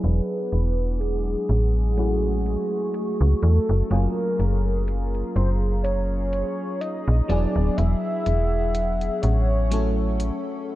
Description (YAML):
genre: vaporwave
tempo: 62 BPM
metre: 4/4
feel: swing 55% on 16ths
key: unclear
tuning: A4 = 441 Hz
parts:
  - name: warm velvety synth lead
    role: melody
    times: 0.0-10.7 s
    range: G#4 to E5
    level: -28 LUFS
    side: equal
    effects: chorus, tremolo, cassette tape, tape echo
  - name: FM electric piano with soft pad layer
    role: accompaniment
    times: 0.0-10.8 s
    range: F#3 to A4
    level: -28 LUFS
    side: left 1 dB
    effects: lush chorus
  - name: warbly tape-like pad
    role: sustained chords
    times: 1.1-10.7 s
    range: A3 to D6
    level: -38 LUFS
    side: equal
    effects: chorus, built-in reverb
  - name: slap-like FM bass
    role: bass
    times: 0.0-10.3 s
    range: D1 to E2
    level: -21 LUFS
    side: equal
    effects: none
  - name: electronic hi-hat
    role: drums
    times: 0.0-10.4 s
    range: none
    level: -41 LUFS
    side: right 1 dB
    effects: none
room: light reverb, digital ambience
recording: dark, warm production, cassette tape, low-pass filter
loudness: -20 LUFS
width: side -16 dB against mid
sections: 0.0-10.8 A section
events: filter sweep on ambient pad 0.0-10.8; filter sweep 0.0-10.8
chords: 0.0 E9; 2.0 A6; 3.9 Gbmaj9; 7.3 E9; 9.7 A6